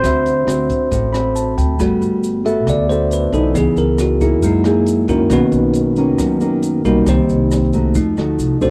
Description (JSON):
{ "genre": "bossa nova", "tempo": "136 BPM", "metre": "4/4", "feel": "straight", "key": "unclear", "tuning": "A4 = 440 Hz", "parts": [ { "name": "barky tine electric piano", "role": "melody", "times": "0.0-1.5 s", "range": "C5", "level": "-20 LUFS", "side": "equal", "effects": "none" }, { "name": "bell-like tine electric piano", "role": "accompaniment", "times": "0.0-8.7 s", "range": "D#3 to B5", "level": "-19 LUFS", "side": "equal", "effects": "cassette tape" }, { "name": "nylon-string guitar", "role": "accompaniment", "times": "0.0-8.7 s", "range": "F#2 to C5", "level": "-22 LUFS", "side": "equal", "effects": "cassette tape" }, { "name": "upright bass", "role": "bass", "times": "0.0-8.7 s", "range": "G1 to F#2", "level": "-22 LUFS", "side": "equal", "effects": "none" }, { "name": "open jazz drum kit", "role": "drums", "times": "0.0-8.7 s", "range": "hi-hat, kick drum, rim click", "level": "-29 LUFS", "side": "equal", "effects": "cassette tape" }, { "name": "tube shaker", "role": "percussion", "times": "0.0-8.7 s", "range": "none", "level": "-40 LUFS", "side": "equal", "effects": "none" } ], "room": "small room ambience", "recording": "home recording on cassette", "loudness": "-16 LUFS", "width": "mono", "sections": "0.0-1.8 A section; 1.8-8.7 B section", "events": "tine electric piano fill 0.9-1.8; tine electric piano solo 1.8-8.7", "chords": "0.0 D13; 1.8 Gmaj9; 3.5 C#m9; 4.4 F#9; 5.3 Bmaj9; 7.1 Cm7; 7.9 F7b9" }